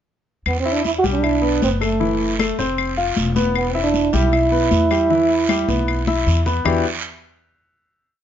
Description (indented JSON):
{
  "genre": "Afro-Cuban jazz",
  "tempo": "155 BPM",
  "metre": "4/4",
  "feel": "straight",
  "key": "E minor",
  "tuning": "A4 = 440 Hz",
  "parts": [
    { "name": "trombone with bucket mute", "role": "melody", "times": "0.5-6.3 s", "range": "A3 to F#4", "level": "-19 LUFS", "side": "right 4 dB", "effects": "none" },
    { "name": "upright bass", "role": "bass", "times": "0.5-6.8 s", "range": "E1 to E2", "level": "-22 LUFS", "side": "equal", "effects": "none" },
    { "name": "claves", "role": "percussion", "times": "0.5-6.7 s", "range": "none", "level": "-27 LUFS", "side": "left 10 dB", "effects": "none" },
    { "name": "congas", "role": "percussion", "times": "0.5-6.7 s", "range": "none", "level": "-25 LUFS", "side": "left 2 dB", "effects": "none" },
    { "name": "guiro", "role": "percussion", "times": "0.5-6.7 s", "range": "none", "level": "-30 LUFS", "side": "right 7 dB", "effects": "none" },
    { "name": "clear concert grand piano", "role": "accompaniment", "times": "0.7-6.8 s", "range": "E3 to F5", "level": "-21 LUFS", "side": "left 4 dB", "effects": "none" }
  ],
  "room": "moderate studio reverb, RT60 0.8 s",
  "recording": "nothing above 7.5 kHz",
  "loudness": "-16 LUFS",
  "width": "side -9 dB against mid",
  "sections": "0.5-6.7 A section; 6.7-8.2 final chord",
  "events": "drum fill 5.7-6.7",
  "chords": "0.5 Em9; 2.0 F#m7b5; 2.8 F5; 3.6 Em; 6.7 Em9",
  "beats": "| 0.46 0.85 1.24 1.62 | 2.01 2.40 2.78 3.17 | 3.56 3.94 4.33 4.72 | 5.10 5.49 5.88 6.27 | 6.66"
}